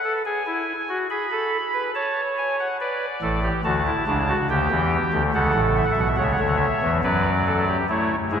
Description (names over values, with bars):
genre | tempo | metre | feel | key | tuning
classical, baroque-style 3-part fugue for pipe organ | 71 BPM | 3/4 | straight | D major | A4 = 440 Hz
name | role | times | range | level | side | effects
pipe organ, soft reed | solo | 0.0-8.4 s | A1 to B5 | -20 LUFS | equal | none
room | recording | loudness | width
wet cathedral reverb, RT60 4.9 s | faint mains hum | -20 LUFS | side -8 dB against mid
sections
0.0-8.4 A section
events
none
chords
0.2 E; 1.9 A/C#; 2.8 D; 4.5 Em7/D; 5.3 A; 7.0 D/F#; 7.9 A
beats
| 0.25 1.10 1.95 | 2.79 3.63 4.49 | 5.33 6.18 7.04 | 7.89